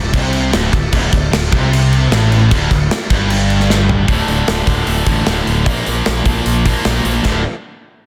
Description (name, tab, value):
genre	hard rock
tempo	152 BPM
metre	4/4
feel	straight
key	D minor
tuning	A4 = 440 Hz
part	overdriven tonewheel organ	sustained chords	0.0-4.1 s	D4 to F5	-32 LUFS	equal	none
part	cranked stack guitar	riff	0.0-7.4 s	D2 to Bb3	-22 LUFS	equal	overdrive
part	high-gain distorted guitar	riff	0.0-7.4 s	D2 to Bb3	-21 LUFS	equal	distortion
part	fuzz fingered electric bass	bass	0.0-7.4 s	D1 to C2	-20 LUFS	equal	overdrive
part	gated 80s drum kit	drums	0.1-7.3 s	crash cymbal, hi-hat, kick drum, snare drum, toms	-19 LUFS	equal	none
room	light reverb, studio ambience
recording	dense, heavily limited modern master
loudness	-14 LUFS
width	mono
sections	0.0-4.1 A section; 4.1-7.3 B section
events	drum fill 3.7-4.1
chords	0.0 Dm; 4.1 D5; 5.7 Bb5; 7.3 D5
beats	0.15 0.54 | 0.94 1.33 1.72 2.12 | 2.51 2.91 3.30 3.70 | 4.09 4.49 4.88 5.28 | 5.68 6.07 6.47 6.86 | 7.26